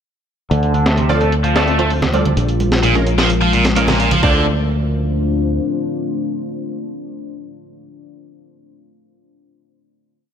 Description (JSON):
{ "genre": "breakbeat, breaks", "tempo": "129 BPM", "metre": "4/4", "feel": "straight", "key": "unclear", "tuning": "A4 = 439 Hz", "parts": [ { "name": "deep dark ambient pad", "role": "sustained chords", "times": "1.5-7.4 s", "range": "Ab3 to C5", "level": "-23 LUFS", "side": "left 4 dB", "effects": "chorus, built-in reverb, sidechain pumping" }, { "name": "cranked stack guitar", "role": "riff", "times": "0.5-4.4 s", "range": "Bb2 to A3", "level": "-18 LUFS", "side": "right 1 dB", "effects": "overdrive, tube saturation, low-pass filter, ping-pong delay" }, { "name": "fingered electric bass", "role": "bass", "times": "0.5-5.6 s", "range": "Bb1 to D2", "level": "-17 LUFS", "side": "equal", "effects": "none" }, { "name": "breakbeat sampler-style drum kit", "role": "drums", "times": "0.5-4.3 s", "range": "hi-hat, kick drum, snare drum", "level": "-20 LUFS", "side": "equal", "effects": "low-pass filter on hats, low-pass filter on snare, low-pass filter on kick" }, { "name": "electronic hi-hat", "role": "drums", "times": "0.5-4.2 s", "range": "none", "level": "-32 LUFS", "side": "equal", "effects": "low-pass filter on hats, low-pass filter on room" }, { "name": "orchestra-hit-like synth stab", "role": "stabs", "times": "1.1-7.3 s", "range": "Ab3 to D5", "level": "-21 LUFS", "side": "right 1 dB", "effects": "built-in reverb, phaser, ping-pong delay" }, { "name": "congas", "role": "percussion", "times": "2.0-4.2 s", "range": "none", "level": "-23 LUFS", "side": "right 4 dB", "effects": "none" } ], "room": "light reverb, digital ambience", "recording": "none", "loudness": "-14 LUFS", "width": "side -8 dB against mid", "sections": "0.5-4.2 breakdown; 4.2-8.0 final chord", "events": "filter sweep on overdriven electric guitar 0.5-4.2", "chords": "0.5 Dm7; 2.4 Bbm7; 4.2 Dm7" }